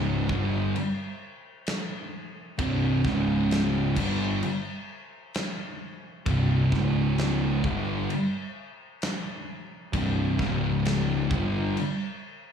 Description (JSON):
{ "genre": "stoner and doom metal", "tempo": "65 BPM", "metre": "4/4", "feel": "straight", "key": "unclear", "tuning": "A4 = 440 Hz", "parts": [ { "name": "thick fuzz guitar", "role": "riff", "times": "0.0-11.8 s", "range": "C2 to G3", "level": "-28 LUFS", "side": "left 7 dB", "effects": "distortion, slapback echo" }, { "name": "thick fuzz guitar", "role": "riff", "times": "0.0-11.8 s", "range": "C2 to G3", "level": "-28 LUFS", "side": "right 8 dB", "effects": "distortion, slapback echo" }, { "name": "fuzz picked electric bass", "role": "bass", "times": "0.0-11.7 s", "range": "C1 to G1", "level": "-30 LUFS", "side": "equal", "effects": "overdrive" }, { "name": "big rock drum kit", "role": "drums", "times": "0.3-12.0 s", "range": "crash cymbal, kick drum, snare drum", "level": "-33 LUFS", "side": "equal", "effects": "none" } ], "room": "light reverb", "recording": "live gig heard through the venue's PA, club reverb", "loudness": "-24 LUFS", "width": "side -7 dB against mid", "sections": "0.0-12.5 A section", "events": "none", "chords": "0.3 C5; 3.1 Db5; 4.0 C5; 6.7 Db5; 7.6 C5; 10.4 Db5; 11.3 G5" }